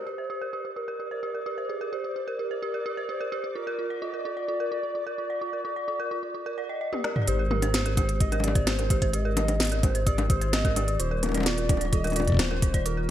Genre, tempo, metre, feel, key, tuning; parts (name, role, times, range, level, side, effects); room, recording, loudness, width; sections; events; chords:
IDM; 129 BPM; 4/4; straight; Ab lydian; A4 = 442 Hz
warbly nostalgic lead; melody; 0.0-13.1 s; Ab4 to Eb5; -33 LUFS; left 1 dB; chorus, tremolo, ping-pong delay
flickering grainy texture; texture; 0.6-6.8 s; D5; -40 LUFS; right 2 dB; built-in reverb
dark detuned synth bell; arpeggios; 0.1-13.0 s; F4 to Eb5; -32 LUFS; right 2 dB; chorus, phaser, vintage 12-bit sampler grit, low-pass filter, digital delay
organic electronic drum kit; drums; 6.9-12.9 s; bongos, hi-hat, snare drum, toms; -28 LUFS; left 2 dB; low-pass filter on hats, studio ambience, low-pass filter on snare, low-pass filter on toms, low-pass filter on perc, gated reverb
dark detuned saw bass; bass; 7.3-13.1 s; Eb1 to Ab1; -28 LUFS; equal
electronic kick drum; drums; 8.0-12.8 s; -24 LUFS; equal; studio ambience
moderate plate reverb, RT60 1.4 s; bright 1980s-style digital production; -25 LUFS; side -11 dB against mid
0.0-7.3 A section; 7.3-13.1 B section
drum fill 6.9-7.3
0.0 Gmadd11; 3.6 Ebmaj7sus2 (rootless); 7.3 Abmaj9; 11.0 Ebmaj7sus2